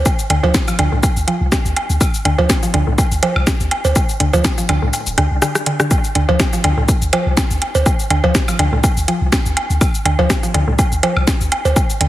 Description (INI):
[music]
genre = minimal techno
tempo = 123 BPM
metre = 4/4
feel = swing 55% on 16ths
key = D minor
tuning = A4 = 440 Hz
[part]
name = punchy sub bass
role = bass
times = 0.0-12.1 s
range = D1 to D2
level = -17 LUFS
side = equal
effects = sidechain pumping
[part]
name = electronic kick drum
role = drums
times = 0.1-11.9 s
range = none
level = -17 LUFS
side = equal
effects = none
[part]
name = house drum kit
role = drums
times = 0.1-12.1 s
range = hi-hat, rim click, shaker, snare drum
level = -20 LUFS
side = equal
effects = none
[part]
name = woodblock and cowbell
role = percussion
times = 0.1-12.1 s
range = none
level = -20 LUFS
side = right 2 dB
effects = ping-pong delay
[part]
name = mallet-like synth pluck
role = riff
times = 0.3-12.1 s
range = A2 to F3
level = -21 LUFS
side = left 1 dB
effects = chorus, sidechain pumping, digital delay
[sound]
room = light reverb, digital ambience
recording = heavily compressed radio sound, multiband compression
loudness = -13 LUFS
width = side -14 dB against mid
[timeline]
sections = 0.0-12.1 A section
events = kick drops out 4.9-5.9; drum fill 5.2-5.9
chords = 0.0 D5